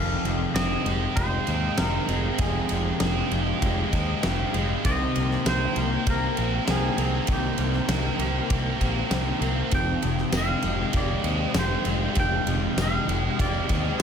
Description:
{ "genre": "rock, shoegaze and dream pop", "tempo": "98 BPM", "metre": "4/4", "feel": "straight", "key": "unclear", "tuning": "A4 = 435 Hz", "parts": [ { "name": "twangy electric guitar", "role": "melody", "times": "0.0-14.0 s", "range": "G4 to G5", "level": "-32 LUFS", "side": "right 1 dB", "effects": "warbly pitch drift, analog delay" }, { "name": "glass harmonica", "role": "sustained chords", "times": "0.0-14.0 s", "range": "Ab3 to F6", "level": "-36 LUFS", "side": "equal", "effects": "none" }, { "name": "twelve-string electric guitar", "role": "arpeggios", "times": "0.0-14.0 s", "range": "Eb3 to G4", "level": "-34 LUFS", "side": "right 1 dB", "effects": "ensemble chorus, analog delay" }, { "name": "biting overdriven guitar", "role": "riff", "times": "0.0-14.0 s", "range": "F2 to G4", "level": "-30 LUFS", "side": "right 13 dB", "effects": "reverse reverb" }, { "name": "overdriven electric guitar", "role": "riff", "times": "0.0-14.0 s", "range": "F2 to Eb4", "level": "-30 LUFS", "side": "left 12 dB", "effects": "ensemble chorus" }, { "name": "growling fingered electric bass", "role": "bass", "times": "0.0-14.0 s", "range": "F1 to Eb2", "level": "-28 LUFS", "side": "equal", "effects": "overdrive" }, { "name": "huge arena drum kit", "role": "drums", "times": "0.3-14.0 s", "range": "kick drum, ride cymbal, snare drum", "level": "-29 LUFS", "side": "equal", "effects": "none" }, { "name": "tambourine", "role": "percussion", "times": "10.3-12.9 s", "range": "none", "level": "-41 LUFS", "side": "left 10 dB", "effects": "none" } ], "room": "light reverb, small room ambience", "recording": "none", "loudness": "-22 LUFS", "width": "side -7 dB against mid", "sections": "0.0-14.0 A section", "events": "none", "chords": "0.0 Fm9; 4.8 Cm7; 9.7 Fm9" }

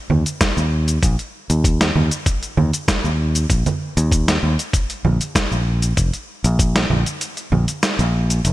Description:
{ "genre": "sunset chillout", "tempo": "97 BPM", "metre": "4/4", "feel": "straight", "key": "unclear", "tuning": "A4 = 440 Hz", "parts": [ { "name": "fingered electric bass", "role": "bass", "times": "0.1-8.5 s", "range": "F1 to Eb2", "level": "-17 LUFS", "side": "equal", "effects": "tube saturation" }, { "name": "dusty soul sampler-style drum kit", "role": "drums", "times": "0.1-8.5 s", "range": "cabasa, congas, hi-hat, snare drum", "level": "-21 LUFS", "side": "right 1 dB", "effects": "overdrive, gated reverb" }, { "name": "electronic kick drum", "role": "drums", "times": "0.4-6.7 s", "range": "none", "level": "-20 LUFS", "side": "equal", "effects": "overdrive" } ], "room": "light reverb", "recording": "bright 1980s-style digital production", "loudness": "-16 LUFS", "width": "side -16 dB against mid", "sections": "0.0-8.5 A section", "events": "kick drops out 7.2-8.5", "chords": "none" }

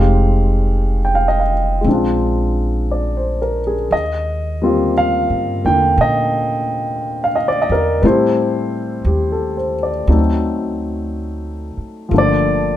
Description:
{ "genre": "jazz ballad", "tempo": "59 BPM", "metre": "4/4", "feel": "swing 67% on 8ths", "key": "unclear", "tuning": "A4 = 441 Hz", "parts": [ { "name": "warm grand piano", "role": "accompaniment", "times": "0.0-12.8 s", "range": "D3 to G5", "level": "-16 LUFS", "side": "left 1 dB", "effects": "none" }, { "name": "upright bass", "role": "bass", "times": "0.0-12.8 s", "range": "F1 to Bb2", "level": "-19 LUFS", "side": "equal", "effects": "none" } ], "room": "light reverb", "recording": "close, detailed microphones", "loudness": "-15 LUFS", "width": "side -12 dB against mid", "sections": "0.0-12.8 A section", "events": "none", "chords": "0.0 Fm9; 1.9 Bb7; 3.9 Eb6; 8.0 Am7; 10.1 D7b9; 12.1 Gm7" }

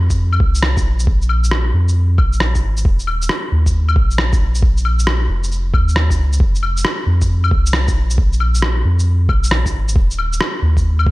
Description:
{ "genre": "future garage", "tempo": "135 BPM", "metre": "4/4", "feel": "swing 66% on 16ths", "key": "F minor", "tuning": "A4 = 441 Hz", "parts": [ { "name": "soft dub sub bass", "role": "bass", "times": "0.0-11.1 s", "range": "Eb1 to F2", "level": "-15 LUFS", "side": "equal", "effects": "tube saturation, sidechain pumping" }, { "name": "electronic kick drum", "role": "drums", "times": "0.1-11.1 s", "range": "none", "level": "-15 LUFS", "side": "equal", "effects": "none" }, { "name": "electronic shaker, claves and rim click", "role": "drums", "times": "0.1-11.1 s", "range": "none", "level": "-21 LUFS", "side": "equal", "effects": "none" } ], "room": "light reverb", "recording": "faint mains hum", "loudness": "-13 LUFS", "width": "side -19 dB against mid", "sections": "0.0-11.1 A section", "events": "none", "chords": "none" }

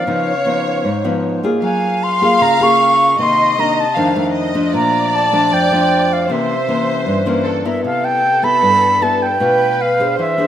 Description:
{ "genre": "bossa nova", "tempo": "154 BPM", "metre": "4/4", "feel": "straight", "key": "unclear", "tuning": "A4 = 439 Hz", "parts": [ { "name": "bright reedy concert flute", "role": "melody", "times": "0.0-10.5 s", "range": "E5 to Db6", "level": "-15 LUFS", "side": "equal", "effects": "none" }, { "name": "warm studio violin section", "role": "second line", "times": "0.0-10.5 s", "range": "A4 to F5", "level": "-20 LUFS", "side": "equal", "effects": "none" }, { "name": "nylon-string guitar", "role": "accompaniment", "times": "0.0-10.5 s", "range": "F2 to C5", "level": "-17 LUFS", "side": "left 1 dB", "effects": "none" } ], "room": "moderate lush hall reverb, RT60 2.4 s", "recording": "rough home demo mix", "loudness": "-13 LUFS", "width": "side -10 dB against mid", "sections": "0.0-7.8 A section; 7.8-10.5 B section", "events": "none", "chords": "0.1 Db9; 1.6 Gbmaj9; 3.2 Cm9; 4.0 F6; 4.7 Bbmaj7; 6.3 C7b9; 7.8 C6; 9.4 Bm7b5" }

